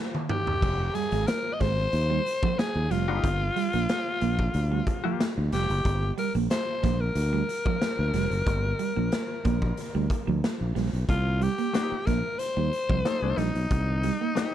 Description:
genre	funk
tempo	92 BPM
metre	4/4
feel	straight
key	C minor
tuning	A4 = 443 Hz
part	raw garage drum kit	drums	0.1-14.5 s	crash cymbal, hi-hat, kick drum, snare drum, toms	-30 LUFS	equal	none
part	raspy alto saxophone	melody	0.3-14.5 s	Eb4 to Eb5	-30 LUFS	left 2 dB	none
part	overdriven fingered electric bass	bass	0.6-14.1 s	F1 to Eb2	-27 LUFS	equal	none
part	clean electric guitar	riff	0.8-14.3 s	F3 to Bb3	-32 LUFS	right 9 dB	spring reverb
part	semi-hollow electric guitar	accompaniment	3.1-5.2, 11.7-14.5 s	Ab3 to A4	-31 LUFS	left 11 dB	none
room	studio reverb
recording	none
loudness	-24 LUFS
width	side -11 dB against mid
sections	0.6-11.1 A section; 11.1-14.5 B section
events	drum fill 0.0-0.6; band accent 0.0-0.6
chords	0.0 N.C.; 0.6 Fm9; 3.2 Gm7; 11.1 Cm7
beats	| 0.62 1.27 1.93 2.58 | 3.23 3.89 4.54 5.20 | 5.85 6.50 7.16 7.81 | 8.47 9.12 9.78 10.43 | 11.09 11.74 12.40 13.05 | 13.71 14.36

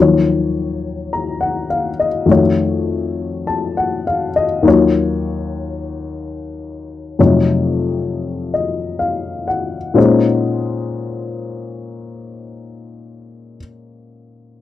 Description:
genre	jazz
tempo	41-52 BPM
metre	4/4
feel	swing 68% on 8ths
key	Bb minor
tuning	A4 = 440 Hz
part	dark baby grand piano	accompaniment	0.0-14.6 s	Eb2 to Bb5	-16 LUFS	left 3 dB	none
room	little or no reverb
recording	dry, close 1970s-style studio recording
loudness	-15 LUFS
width	side -12 dB against mid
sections	0.0-10.0 A section; 10.0-14.6 B section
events	slowing down 0.0-10.0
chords	0.0 Ebm9; 2.3 F7b9b13; 4.7 Ebm9; 7.2 F7b9b13; 10.0 Bbm11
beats	1.11 2.27 3.45 | 4.65 5.89 7.18 8.54 | 9.97 11.43 12.89 14.33

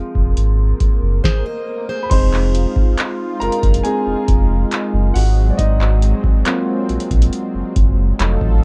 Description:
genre	contemporary R&B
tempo	69 BPM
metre	4/4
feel	straight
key	unclear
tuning	A4 = 440 Hz
part	warm grand piano	accompaniment	0.0-8.6 s	F3 to C6	-24 LUFS	equal	none
part	sub bass with octave	bass	0.0-8.6 s	F1 to Bb1	-18 LUFS	equal	none
part	swell	sound effects	0.3-2.1 s	none	-32 LUFS	equal	none
part	booming analog drum machine	drums	0.2-8.6 s	crash cymbal, handclaps, hi-hat, kick drum, snare drum	-19 LUFS	equal	none
part	picked plugged-in steel-string acoustic guitar	arpeggios	1.2-2.3 s	Ab4 to Eb5	-28 LUFS	equal	delay
part	lush unison pad	sustained chords	2.1-8.6 s	Gb3 to A4	-27 LUFS	equal	chorus, sidechain pumping
room	light reverb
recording	dark, warm production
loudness	-16 LUFS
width	mono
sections	0.0-2.1 A section; 2.1-8.6 B section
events	swell 0.3-2.1; stop 1.2-2.1; grand piano solo 2.1-8.6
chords	0.0 Fm7; 5.2 Ab13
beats	0.37 1.24 | 2.11 2.98 3.85 4.72 | 5.59 6.46 7.33 8.20

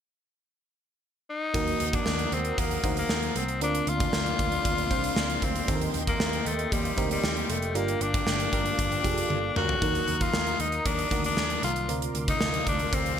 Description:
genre	1980s-style pop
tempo	116 BPM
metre	4/4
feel	straight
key	unclear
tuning	A4 = 440 Hz
part	raspy tenor saxophone	melody	1.3-13.2 s	G3 to Gb4	-29 LUFS	left 3 dB	ping-pong delay
part	FM electric piano	accompaniment	1.5-13.2 s	G2 to D5	-34 LUFS	right 3 dB	chorus, phaser
part	brassy analog pad	sustained chords	1.5-13.2 s	Bb3 to Eb6	-37 LUFS	equal	chorus
part	vintage muted picked electric bass	bass	1.5-13.2 s	F1 to Eb2	-33 LUFS	equal	none
part	gated 80s drum kit	drums	1.5-13.2 s	hi-hat, kick drum, snare drum, toms	-29 LUFS	right 1 dB	gated reverb
part	warm horn section	stabs	8.5-9.7 s	F4 to Bb4	-38 LUFS	right 4 dB	none
room	light reverb, small room reverb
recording	bright 1980s-style digital production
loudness	-24 LUFS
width	side -8 dB against mid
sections	0.0-1.5 A section; 1.5-13.2 B section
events	band accent 7.8-9.8; drum fill 9.3-9.8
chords	0.0 N.C.; 1.5 Ebm; 3.6 Bbadd9/D; 5.7 Cm7/Eb; 7.8 Gm7; 9.8 Ebm; 11.9 Bbadd9/D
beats	0.51 1.03 | 1.54 2.06 2.58 3.10 | 3.61 4.13 4.65 5.17 | 5.68 6.20 6.72 7.24 | 7.75 8.27 8.79 9.30 | 9.82 10.34 10.86 11.37 | 11.89 12.41 12.92

